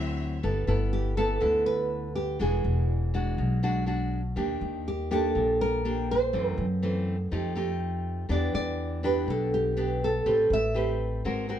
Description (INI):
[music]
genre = bossa nova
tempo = 122 BPM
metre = 4/4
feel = straight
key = G major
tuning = A4 = 440 Hz
[part]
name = nylon-string guitar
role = accompaniment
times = 0.0-11.6 s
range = F#2 to B4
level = -30 LUFS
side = equal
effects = none
[part]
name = upright bass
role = bass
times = 0.0-11.6 s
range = E1 to F#2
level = -30 LUFS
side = equal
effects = none
[part]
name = nylon-string guitar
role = melody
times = 0.9-11.0 s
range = G4 to E5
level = -27 LUFS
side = right 1 dB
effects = none
[sound]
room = light reverb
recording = band playing live in one room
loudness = -25 LUFS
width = side -10 dB against mid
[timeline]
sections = 0.4-11.6 A section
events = none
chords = 0.4 G69; 2.4 E9; 4.4 Ebmaj7; 6.3 F#m7b5; 7.3 F9; 8.3 Em7; 10.3 Am9